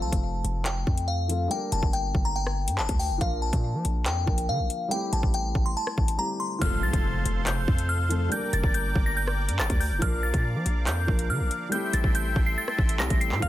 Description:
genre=hip hop, drill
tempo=141 BPM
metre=4/4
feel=half-time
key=A phrygian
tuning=A4 = 439 Hz
part: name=glassy synth bell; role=melody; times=0.0-13.5 s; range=F5 to C7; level=-30 LUFS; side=left 2 dB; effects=chorus, tape echo
part: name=dark concert grand piano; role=accompaniment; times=0.0-13.5 s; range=F3 to Bb4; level=-34 LUFS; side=left 1 dB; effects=none
part: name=hard-hitting 808-style bass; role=bass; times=0.0-13.5 s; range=F1 to F3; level=-28 LUFS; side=equal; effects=none
part: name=drill drum kit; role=drums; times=0.1-13.5 s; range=handclaps, hi-hat, kick drum, rim click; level=-26 LUFS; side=equal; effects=none
part: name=musette accordion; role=sustained chords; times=6.6-13.5 s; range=A4 to D6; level=-37 LUFS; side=right 4 dB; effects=none
part: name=impact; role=sound effects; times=6.6-8.3 s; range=none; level=-35 LUFS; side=equal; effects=none
part: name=mallet-like synth pluck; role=second line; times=13.4-13.5 s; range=F5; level=-31 LUFS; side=right 8 dB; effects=chorus, phaser
room=little or no reverb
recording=dense, heavily limited modern master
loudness=-24 LUFS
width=side -14 dB against mid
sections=0.0-6.6 A section; 6.6-13.5 B section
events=impact 6.6-8.3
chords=0.0 F; 1.5 Gm; 3.2 Bb; 4.9 Am7; 6.6 F; 8.3 Gm; 10.0 Bb; 11.7 Am7

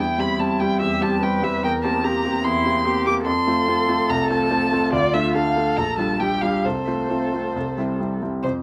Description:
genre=quick classical-period movement for piano trio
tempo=132-148 BPM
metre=4/4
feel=rubato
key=F major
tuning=A4 = 440 Hz
part: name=muted violin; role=melody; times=0.0-8.5 s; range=C5 to D6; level=-26 LUFS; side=equal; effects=none
part: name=muted cello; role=second line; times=0.0-8.5 s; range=C3 to B4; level=-29 LUFS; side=equal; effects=none
part: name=clear baby grand piano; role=accompaniment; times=0.0-8.6 s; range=Bb1 to G4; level=-24 LUFS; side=equal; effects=none
room=light reverb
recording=close, detailed microphones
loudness=-21 LUFS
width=mono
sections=0.0-8.4 A section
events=none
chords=0.0 C/E; 1.6 C7/E; 3.3 F; 4.9 Dm; 5.8 Gm7/Bb; 6.6 F/C; 7.5 C

